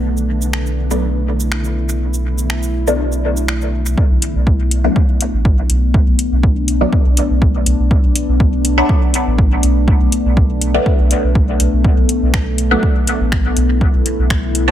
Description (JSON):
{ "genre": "dub techno", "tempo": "122 BPM", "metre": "4/4", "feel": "straight", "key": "B minor", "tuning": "A4 = 441 Hz", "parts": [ { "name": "deep dark ambient pad", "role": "sustained chords", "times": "0.0-14.7 s", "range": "A3 to E4", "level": "-21 LUFS", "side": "left 2 dB", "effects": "chorus, built-in reverb, sidechain pumping" }, { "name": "soft dub sub bass", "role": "bass", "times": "0.0-14.7 s", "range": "A1 to B1", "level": "-17 LUFS", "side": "equal", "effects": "sidechain pumping" }, { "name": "flickering grainy texture", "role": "texture", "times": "0.0-4.0 s", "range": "D3", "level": "-32 LUFS", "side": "right 1 dB", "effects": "built-in reverb, sidechain pumping" }, { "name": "soft vintage rhythm box", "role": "drums", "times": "0.2-14.7 s", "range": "cabasa, finger snaps, hi-hat", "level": "-22 LUFS", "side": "left 1 dB", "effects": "dub echo" }, { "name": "filtered dub chord stab", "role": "stabs", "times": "0.9-14.7 s", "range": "F#3 to D4", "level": "-20 LUFS", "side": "left 1 dB", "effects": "phaser, dub echo" }, { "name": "electronic kick drum", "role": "drums", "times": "4.0-14.4 s", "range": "none", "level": "-15 LUFS", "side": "equal", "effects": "overdrive" } ], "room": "little or no reverb", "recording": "none", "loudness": "-13 LUFS", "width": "side -11 dB against mid", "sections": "0.0-4.0 A section; 4.0-14.7 B section", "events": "filter sweep on synth stab 0.0-4.0", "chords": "0.0 Bm7", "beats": "| 0.04 0.53 1.02 1.52 | 2.01 2.50 2.99 3.48 | 3.98 4.47 4.96 5.45 | 5.94 6.43 6.93 7.42 | 7.91 8.40 8.89 9.38 | 9.88 10.37 10.86 11.35 | 11.84 12.34 12.83 13.32 | 13.81 14.30" }